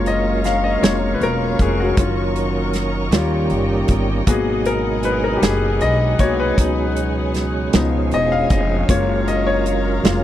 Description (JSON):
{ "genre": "slow gospel", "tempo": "52 BPM (dotted quarters)", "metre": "6/8", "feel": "straight", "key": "F# major", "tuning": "A4 = 440 Hz", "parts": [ { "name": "bright baby grand piano", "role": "accompaniment", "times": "0.0-10.2 s", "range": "E#3 to E#5", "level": "-20 LUFS", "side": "left 4 dB", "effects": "none" }, { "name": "percussive tonewheel organ", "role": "sustained chords", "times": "0.0-10.2 s", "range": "B2 to A#4", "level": "-24 LUFS", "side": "right 5 dB", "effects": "fast rotary speaker, chorus vibrato" }, { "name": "rich studio string section", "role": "sustained chords", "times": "0.0-10.2 s", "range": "C#5 to C#6", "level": "-30 LUFS", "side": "equal", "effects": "none" }, { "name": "upright bass", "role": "bass", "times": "0.0-10.2 s", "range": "E1 to D#2", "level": "-22 LUFS", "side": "equal", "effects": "none" }, { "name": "natural country drum kit", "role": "drums", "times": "0.1-10.2 s", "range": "hi-hat, kick drum, snare drum", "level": "-17 LUFS", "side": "right 1 dB", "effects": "none" } ], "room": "little or no reverb", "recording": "dry, close 1970s-style studio recording", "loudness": "-16 LUFS", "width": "side -12 dB against mid", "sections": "0.0-10.2 A section", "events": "grand piano solo 0.0-10.2", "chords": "0.0 F#maj7; 2.0 D#m7/F#; 3.1 D#7; 4.3 G#m7; 6.6 C#7sus4; 7.7 C#7; 8.9 F#maj7" }